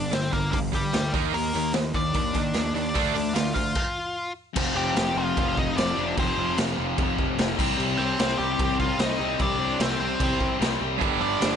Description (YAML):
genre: punk rock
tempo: 149 BPM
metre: 4/4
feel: straight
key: unclear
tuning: A4 = 440 Hz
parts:
  - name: nasal lead guitar with a parked wah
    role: melody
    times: 0.0-11.6 s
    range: G3 to G5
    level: -28 LUFS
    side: left 2 dB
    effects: overdrive
  - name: distorted electric guitar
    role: riff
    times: 0.0-11.6 s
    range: F2 to Eb4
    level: -31 LUFS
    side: left 12 dB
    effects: distortion
  - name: distorted electric guitar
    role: riff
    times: 0.0-3.7, 11.0-11.6 s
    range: G2 to Eb4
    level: -29 LUFS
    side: right 15 dB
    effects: overdrive
  - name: fuzz picked electric bass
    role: bass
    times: 0.0-11.6 s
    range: F1 to Eb3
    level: -31 LUFS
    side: right 1 dB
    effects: overdrive
  - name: raw garage drum kit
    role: drums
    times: 0.1-11.5 s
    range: crash cymbal, hi-hat, kick drum, snare drum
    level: -27 LUFS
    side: right 1 dB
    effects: none
  - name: sludgy distorted guitar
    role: riff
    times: 4.6-11.6 s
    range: F2 to C4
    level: -29 LUFS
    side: right 1 dB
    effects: overdrive
room: little or no reverb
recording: nothing above 10.4 kHz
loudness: -22 LUFS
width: side -8 dB against mid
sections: 0.0-4.6 A section; 4.6-11.6 B section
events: stop 3.8-4.6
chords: 0.0 Gm; 1.1 Eb5; 3.0 Dm; 4.6 F5; 7.6 Cm; 11.0 G5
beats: 0.13 0.53 0.94 | 1.34 1.74 2.15 2.55 | 2.95 3.36 3.76 4.16 | 4.57 4.97 5.37 5.77 | 6.18 6.58 6.98 7.38 | 7.79 8.19 8.59 8.99 | 9.39 9.80 10.20 10.60 | 11.00 11.40